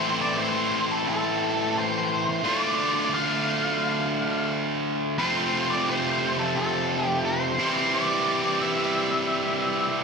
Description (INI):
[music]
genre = rock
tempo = 87 BPM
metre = 4/4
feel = straight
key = A minor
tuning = A4 = 440 Hz
[part]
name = octave-fuzz lead guitar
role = melody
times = 0.0-9.9 s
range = A4 to F5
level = -27 LUFS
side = left 1 dB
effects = distortion, slapback echo
[part]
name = distorted electric guitar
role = riff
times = 0.0-10.0 s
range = F2 to F4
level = -24 LUFS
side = right 1 dB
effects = overdrive
[sound]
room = wet lush hall reverb, RT60 2.2 s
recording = big arena sound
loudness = -22 LUFS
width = side -5 dB against mid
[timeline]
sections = 0.0-10.0 A section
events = none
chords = 0.0 Am; 2.4 Dm; 5.2 F; 7.6 C